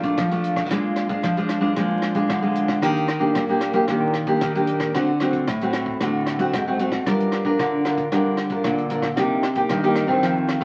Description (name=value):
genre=samba and choro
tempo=113 BPM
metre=4/4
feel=straight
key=Bb major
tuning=A4 = 441 Hz
part: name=nylon-string guitar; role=accompaniment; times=0.0-10.6 s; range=F2 to Bb4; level=-23 LUFS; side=equal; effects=none
part: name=nylon-string guitar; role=bass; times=0.0-10.6 s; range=G2 to F3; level=-30 LUFS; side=equal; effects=none
part: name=compact cocktail drum kit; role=drums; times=0.0-10.6 s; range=hi-hat, kick drum, rim click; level=-32 LUFS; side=equal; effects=none
room=wet club reverb, RT60 0.8 s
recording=very old 78 rpm record, vinyl crackle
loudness=-22 LUFS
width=mono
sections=0.0-10.6 A section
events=none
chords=0.0 Bbmaj7; 0.7 Bb7; 2.8 Ebmaj7; 4.9 D7; 7.1 Gm7; 9.2 Cm7